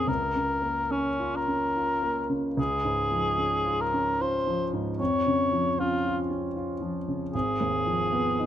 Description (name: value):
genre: classical, romantic duo for cor anglais and grand piano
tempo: 67-79 BPM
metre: 3/4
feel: rubato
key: unclear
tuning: A4 = 442 Hz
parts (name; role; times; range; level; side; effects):
- mellow cor anglais; melody; 0.0-8.5 s; Db4 to Db5; -26 LUFS; left 1 dB; none
- warm concert grand piano; accompaniment; 0.0-8.5 s; Ab1 to F4; -28 LUFS; equal; none
room: light reverb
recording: none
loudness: -25 LUFS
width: side -11 dB against mid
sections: 0.0-8.5 A section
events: none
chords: 0.1 Bbm/Db; 2.6 Db; 5.0 Db/F; 7.3 Fm7b5/Ab